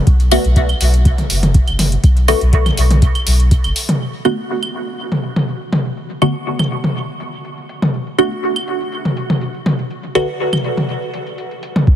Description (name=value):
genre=dub techno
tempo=122 BPM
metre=4/4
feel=straight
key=B minor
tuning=A4 = 440 Hz
part: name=soft dub sub bass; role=bass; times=0.1-3.7, 11.9-12.0 s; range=F#1 to B1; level=-14 LUFS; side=equal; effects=sidechain pumping
part: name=electronic hi-hat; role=drums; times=0.1-11.8 s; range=none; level=-24 LUFS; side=left 1 dB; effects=low-pass filter on hats
part: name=electronic kick drum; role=drums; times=0.1-3.6, 11.9-12.0 s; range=none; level=-13 LUFS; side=equal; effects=none
part: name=filtered dub chord stab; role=stabs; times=0.3-10.3 s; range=D3 to F#4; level=-20 LUFS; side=equal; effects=phaser, sidechain pumping, dub echo
part: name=electronic claves and toms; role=percussion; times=0.3-11.9 s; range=none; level=-19 LUFS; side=equal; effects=overdrive, sidechain pumping on toms, sidechain pumping on perc, dub echo
part: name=bubbling stepped-filter texture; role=texture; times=11.9-12.0 s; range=none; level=barely audible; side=none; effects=none
room=light reverb, digital ambience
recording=heavily compressed radio sound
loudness=-14 LUFS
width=side -11 dB against mid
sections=0.0-4.0 A section; 4.0-11.9 B section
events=filter sweep on synth stab 4.0-11.9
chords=0.0 B5; 4.0 Bm7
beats=| 0.07 0.56 1.05 1.54 | 2.04 2.53 3.02 3.51 | 4.00 4.50 4.99 5.48 | 5.97 6.46 6.96 7.45 | 7.94 8.43 8.92 9.41 | 9.91 10.40 10.89 11.38 | 11.87